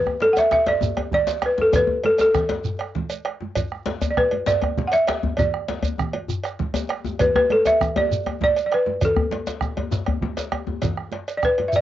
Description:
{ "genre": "west african traditional, West African drum ensemble", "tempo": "132 BPM (dotted quarters)", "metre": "12/8", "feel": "straight", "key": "unclear", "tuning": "A4 = 441 Hz", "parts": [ { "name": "balafon", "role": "melody", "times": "0.0-11.8 s", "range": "A4 to F#5", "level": "-19 LUFS", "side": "equal", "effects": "cassette tape" }, { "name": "bombo", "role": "percussion", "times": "0.1-11.8 s", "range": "none", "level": "-28 LUFS", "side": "right 3 dB", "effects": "none" }, { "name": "djembe", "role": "percussion", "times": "0.1-11.8 s", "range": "none", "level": "-32 LUFS", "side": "left 3 dB", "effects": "none" }, { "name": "djembe", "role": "percussion", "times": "0.1-11.0 s", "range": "none", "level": "-28 LUFS", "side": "left 4 dB", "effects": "none" }, { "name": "congas", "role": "percussion", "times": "0.2-11.7 s", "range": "none", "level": "-33 LUFS", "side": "right 6 dB", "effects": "none" }, { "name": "cowbell", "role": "percussion", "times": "0.2-11.7 s", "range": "none", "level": "-31 LUFS", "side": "right 4 dB", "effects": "none" }, { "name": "shekere", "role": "percussion", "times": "0.4-11.8 s", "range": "none", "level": "-30 LUFS", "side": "right 3 dB", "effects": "none" } ], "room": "moderate booth ambience, RT60 0.2 s", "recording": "home recording on cassette, nothing above 7.6 kHz", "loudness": "-19 LUFS", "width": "side -12 dB against mid", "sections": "0.0-11.8 A section", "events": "none", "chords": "none", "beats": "0.36 0.82 1.27 | 1.73 2.19 2.65 3.10 | 3.56 4.01 4.47 4.93 | 5.38 5.84 6.29 6.75 | 7.20 7.66 8.11 8.56 | 9.02 9.47 9.92 10.38 | 10.83 11.28 11.73" }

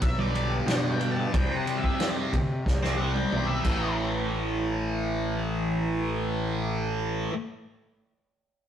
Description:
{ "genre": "psychedelic rock", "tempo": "91 BPM", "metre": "4/4", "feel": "straight", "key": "unclear", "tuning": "A4 = 441 Hz", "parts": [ { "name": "octave-fuzz lead guitar", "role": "melody", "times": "0.0-3.9 s", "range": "D5 to A5", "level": "-34 LUFS", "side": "left 2 dB", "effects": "distortion" }, { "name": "fuzz fingered electric bass", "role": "bass", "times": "0.0-7.2 s", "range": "A1 to C3", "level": "-30 LUFS", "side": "equal", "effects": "overdrive" }, { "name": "vintage drum kit", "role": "drums", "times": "0.0-3.8 s", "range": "crash cymbal, kick drum, ride cymbal, snare drum, toms", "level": "-29 LUFS", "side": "equal", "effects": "none" }, { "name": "thick fuzz guitar", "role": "riff", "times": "0.2-7.3 s", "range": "G2 to C4", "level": "-28 LUFS", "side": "equal", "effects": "distortion, phaser" } ], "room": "moderate stone room reverb, RT60 1.1 s", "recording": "rough rehearsal-room recording, warm saturation", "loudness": "-25 LUFS", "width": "side -9 dB against mid", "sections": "0.0-4.0 A section; 4.0-6.6 B section", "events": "lead electric guitar solo 0.0-4.0; drum fill 2.7-4.0", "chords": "0.0 G/B; 1.3 C5; 3.6 A5", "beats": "0.02 0.68 | 1.33 1.99 2.65 3.31 | 3.97 4.63 5.29 5.95" }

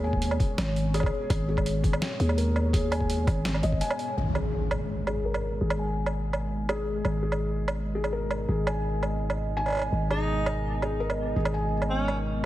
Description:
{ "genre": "half-time drum and bass", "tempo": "167 BPM", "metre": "4/4", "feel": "half-time", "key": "G# minor", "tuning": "A4 = 442 Hz", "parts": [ { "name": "dark analog pad", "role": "sustained chords", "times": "0.0-12.5 s", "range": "G#3 to D#5", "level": "-34 LUFS", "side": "right 1 dB", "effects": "chorus, phaser, vintage 12-bit sampler grit, sidechain pumping" }, { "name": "felt-muted upright piano", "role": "arpeggios", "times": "0.0-12.5 s", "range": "G#4 to G#5", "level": "-33 LUFS", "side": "left 2 dB", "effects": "low-pass filter, tape echo" }, { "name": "growling 808-style bass", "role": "bass", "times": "0.0-12.5 s", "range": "G#1 to D#2", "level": "-28 LUFS", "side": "equal", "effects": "tube saturation" }, { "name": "electronic kick drum", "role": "drums", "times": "0.1-3.8 s", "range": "none", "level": "-28 LUFS", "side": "equal", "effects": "overdrive, studio reverb" }, { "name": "boom bap sampler-style drum kit", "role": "drums", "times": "0.2-12.2 s", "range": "hi-hat, snare drum, woodblock", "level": "-32 LUFS", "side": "right 2 dB", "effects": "overdrive, studio reverb" }, { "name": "impact", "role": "sound effects", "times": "4.2-5.6 s", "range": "none", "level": "-33 LUFS", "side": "equal", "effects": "none" }, { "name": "breathy alto saxophone", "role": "melody", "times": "10.1-12.2 s", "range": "C#4 to D#4", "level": "-33 LUFS", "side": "right 1 dB", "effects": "dub echo" } ], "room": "light reverb, digital ambience", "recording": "heavily compressed radio sound, multiband compression", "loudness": "-25 LUFS", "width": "side -14 dB against mid", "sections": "0.0-4.2 A section; 4.2-12.5 B section", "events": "break 3.8-4.2; impact 4.2-5.6; filter sweep on felt piano 4.2-12.5", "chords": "0.0 G#madd9", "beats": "0.22 0.58 0.94 | 1.30 1.66 2.02 2.38 | 2.74 3.10 3.46 3.82 | 4.17 4.54 4.89 5.25 | 5.61 5.97 6.33 6.69 | 7.05 7.41 7.77 8.13 | 8.49 8.85 9.21 9.56 | 9.92 10.28 10.64 11.00 | 11.36 11.72 12.08 12.44" }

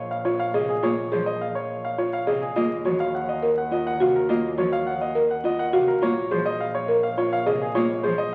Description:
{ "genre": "classical, minimalist pattern music", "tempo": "104 BPM", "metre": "3/4", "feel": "straight", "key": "Bb minor", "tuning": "A4 = 440 Hz", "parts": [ { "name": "clear double bass", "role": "bass", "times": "0.0-8.3 s", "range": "Bb1 to Eb2", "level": "-37 LUFS", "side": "equal", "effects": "none" }, { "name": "clear concert grand piano", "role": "melody", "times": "0.1-8.3 s", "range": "Ab4 to Gb5", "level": "-29 LUFS", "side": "equal", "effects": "none" }, { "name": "buzzing marimba with soft mallets", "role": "arpeggios", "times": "0.3-8.2 s", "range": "F4 to Bb4", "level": "-26 LUFS", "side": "equal", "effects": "none" }, { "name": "rich cello", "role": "accompaniment", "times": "0.5-8.2 s", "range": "C3 to Bb3", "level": "-33 LUFS", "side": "equal", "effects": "none" } ], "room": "wet recital hall reverb, RT60 1.7 s", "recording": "very old 78 rpm record, vinyl crackle", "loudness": "-24 LUFS", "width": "mono", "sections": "0.0-8.3 A section", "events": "none", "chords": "0.0 Bbm7; 2.6 Ebmadd9; 6.0 Bbm7", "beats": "0.25 | 0.83 1.41 1.98 | 2.56 3.14 3.71 | 4.29 4.87 5.44 | 6.02 6.60 7.17 | 7.75 8.33" }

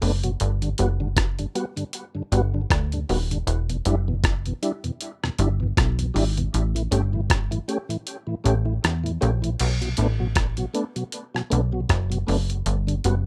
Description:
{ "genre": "roots reggae", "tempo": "78 BPM", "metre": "4/4", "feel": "swing 57% on 16ths", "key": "B minor", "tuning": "A4 = 440 Hz", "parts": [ { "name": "tonewheel organ", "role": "accompaniment", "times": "0.0-13.1 s", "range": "E2 to G4", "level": "-30 LUFS", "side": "equal", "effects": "chorus vibrato, stopped rotary speaker, dub echo, plate reverb" }, { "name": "plucky analog bass", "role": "bass", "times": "0.0-13.3 s", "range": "D#1 to E2", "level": "-25 LUFS", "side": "equal", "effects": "none" }, { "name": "dusty soul sampler-style drum kit", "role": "drums", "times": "0.0-13.2 s", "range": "crash cymbal, hi-hat, kick drum, rim click", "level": "-27 LUFS", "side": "equal", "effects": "none" } ], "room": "little or no reverb", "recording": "none", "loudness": "-24 LUFS", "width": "mono", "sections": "0.0-9.6 A section; 9.6-13.3 B section", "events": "kick muted 8.1-9.6", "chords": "0.4 Gmaj7; 3.5 Em7; 6.5 A7; 9.6 Bm7; 12.7 Gmaj7", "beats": "| 0.40 1.17 1.93 2.70 | 3.46 4.23 5.00 5.76 | 6.53 7.30 8.06 8.83 | 9.60 10.36 11.13 11.90 | 12.67" }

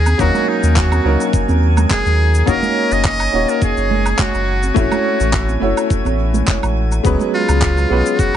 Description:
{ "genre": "sunset chillout", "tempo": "105 BPM", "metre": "4/4", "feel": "swing 54% on 16ths", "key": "F# major", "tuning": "A4 = 444 Hz", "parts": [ { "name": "trumpet with metal mute", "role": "melody", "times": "0.0-8.4 s", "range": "D#4 to D#5", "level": "-20 LUFS", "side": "equal", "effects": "dub echo" }, { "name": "warm sub bass", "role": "bass", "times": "0.0-8.4 s", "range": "D#1 to D#2", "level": "-16 LUFS", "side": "equal", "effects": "none" }, { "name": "drifting glass-harmonics texture", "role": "texture", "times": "0.0-8.4 s", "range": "G#5 to G#6", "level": "-30 LUFS", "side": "right 3 dB", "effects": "chorus, built-in reverb" }, { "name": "electronic woodblock, shaker and handclaps", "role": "drums", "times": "0.1-8.4 s", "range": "none", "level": "-23 LUFS", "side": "equal", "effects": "analog delay" }, { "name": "congas", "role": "percussion", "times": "0.1-7.3 s", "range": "none", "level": "-25 LUFS", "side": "right 6 dB", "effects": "analog delay" }, { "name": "bright grand piano", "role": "accompaniment", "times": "0.2-8.4 s", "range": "F#3 to C#5", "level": "-19 LUFS", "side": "left 1 dB", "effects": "auto-pan, dub echo" }, { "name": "electronic kick drum", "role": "drums", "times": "0.2-8.3 s", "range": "none", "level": "-19 LUFS", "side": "equal", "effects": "overdrive" } ], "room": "light reverb", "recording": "echo-heavy mix, nothing above 10.4 kHz", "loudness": "-13 LUFS", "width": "side -10 dB against mid", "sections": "0.0-8.4 A section", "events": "none", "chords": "0.0 D#m7; 2.5 F#6; 4.8 A6; 7.0 C#7sus4", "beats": "| 0.19 0.76 1.33 1.90 | 2.48 3.05 3.62 4.19 | 4.76 5.33 5.90 6.48 | 7.05 7.62 8.19" }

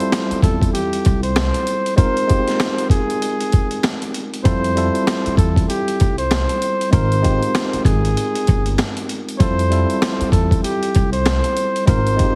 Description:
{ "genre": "hip hop, boom-bap hip-hop", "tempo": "97 BPM", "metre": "4/4", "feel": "swing 60% on 16ths", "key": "unclear", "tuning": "A4 = 441 Hz", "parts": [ { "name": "trumpet with bucket mute", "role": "melody", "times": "0.0-12.4 s", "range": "G4 to C5", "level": "-24 LUFS", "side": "equal", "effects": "high-pass filter, low-pass filter" }, { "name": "tine electric piano", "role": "accompaniment", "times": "0.0-12.4 s", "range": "G3 to Bb4", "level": "-25 LUFS", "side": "equal", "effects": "overdrive, cassette tape, high-pass filter, low-pass filter" }, { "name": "boom bap sampler-style drum kit", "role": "drums", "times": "0.0-12.4 s", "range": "hi-hat, kick drum, snare drum", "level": "-21 LUFS", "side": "equal", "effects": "none" }, { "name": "finger snaps", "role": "percussion", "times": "0.1-11.4 s", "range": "none", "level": "-37 LUFS", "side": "equal", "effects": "none" }, { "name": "upright bass", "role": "bass", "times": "0.3-12.3 s", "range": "G1 to F2", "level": "-22 LUFS", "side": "equal", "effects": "none" } ], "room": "small room ambience", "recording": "heavily compressed radio sound, vinyl crackle", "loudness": "-18 LUFS", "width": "mono", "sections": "0.0-12.4 A section", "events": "none", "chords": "0.0 Fmaj9; 2.0 Ab69; 4.5 Fmaj9; 6.9 Ab69; 9.4 Fmaj9", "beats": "0.12 0.74 1.36 | 1.98 2.60 3.21 3.83 | 4.45 5.07 5.69 6.31 | 6.92 7.54 8.16 8.78 | 9.40 10.02 10.64 11.26 | 11.87" }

